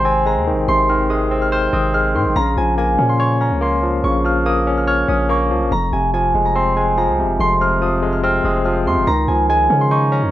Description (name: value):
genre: hip hop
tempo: 143 BPM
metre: 4/4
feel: half-time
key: F minor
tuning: A4 = 442 Hz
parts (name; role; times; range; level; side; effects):
- concert harp; melody; 0.0-10.3 s; Ab5 to F6; -18 LUFS; right 1 dB; none
- barky tine electric piano; accompaniment; 0.0-10.3 s; F2 to Db5; -18 LUFS; left 1 dB; overdrive, fast stereo tremolo
- long sustained 808-style bass; bass; 0.0-10.3 s; F1 to Db3; -21 LUFS; equal; none
room: light reverb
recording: rough home demo mix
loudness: -14 LUFS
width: side -14 dB against mid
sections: 0.0-5.7 A section; 5.7-10.3 A section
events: none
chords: 0.0 Ab; 2.4 Bbm; 5.7 Fm; 9.1 Dbadd9